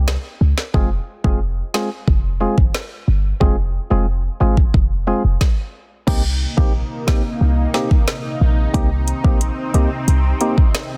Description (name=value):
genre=dancehall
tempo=90 BPM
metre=4/4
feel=straight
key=unclear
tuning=A4 = 443 Hz
part: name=short 808-style bass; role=bass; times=0.0-10.3 s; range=F1 to Db2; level=-20 LUFS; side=equal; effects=none
part: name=afro-pop drum kit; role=drums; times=0.1-10.9 s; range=crash cymbal, hi-hat, kick drum, snare drum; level=-19 LUFS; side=equal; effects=none
part: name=percussive organ stab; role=accompaniment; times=0.7-10.6 s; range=Ab3 to Ab4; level=-25 LUFS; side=equal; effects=chorus
part: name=lush unison pad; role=sustained chords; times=6.4-11.0 s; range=C3 to Eb4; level=-27 LUFS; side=equal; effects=chorus, phaser, sidechain pumping
room=little or no reverb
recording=dense, heavily limited modern master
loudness=-18 LUFS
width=mono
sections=0.0-6.1 A section; 6.1-11.0 B section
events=stop 5.4-6.1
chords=0.0 N.C.; 0.7 Fm; 6.1 Cm7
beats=0.08 | 0.74 1.41 2.08 2.74 | 3.41 4.08 4.74 5.41 | 6.08 6.74 7.41 8.08 | 8.74 9.41 10.08 10.74